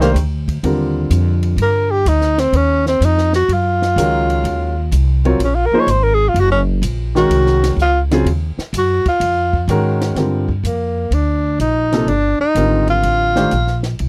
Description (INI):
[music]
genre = modal jazz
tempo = 126 BPM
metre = 4/4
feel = swing 68% on 8ths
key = unclear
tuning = A4 = 441 Hz
[part]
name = breathy tenor saxophone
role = melody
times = 0.0-13.8 s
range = Bb3 to Db5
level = -18 LUFS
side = equal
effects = none
[part]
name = warm baby grand piano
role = accompaniment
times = 0.0-13.5 s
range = C3 to Db5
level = -20 LUFS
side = equal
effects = none
[part]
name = upright bass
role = bass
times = 0.0-14.1 s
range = Gb1 to Ab2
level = -19 LUFS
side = equal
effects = none
[part]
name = compact cocktail drum kit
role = drums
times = 0.0-14.1 s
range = hi-hat, kick drum, ride cymbal, snare drum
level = -30 LUFS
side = equal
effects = none
[sound]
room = little or no reverb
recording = dry, close 1970s-style studio recording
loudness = -16 LUFS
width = mono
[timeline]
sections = 0.0-10.2 A section; 10.2-14.1 B section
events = tenor saxophone solo 0.0-10.2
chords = 0.0 Cm11; 2.5 Ebm11; 10.2 Cm11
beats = 0.15 | 0.63 1.11 1.58 2.06 | 2.54 3.02 3.49 3.97 | 4.45 4.92 5.40 5.88 | 6.35 6.83 7.31 7.78 | 8.26 8.74 9.21 9.69 | 10.17 10.65 11.12 11.60 | 12.08 12.56 13.04 13.52 | 14.00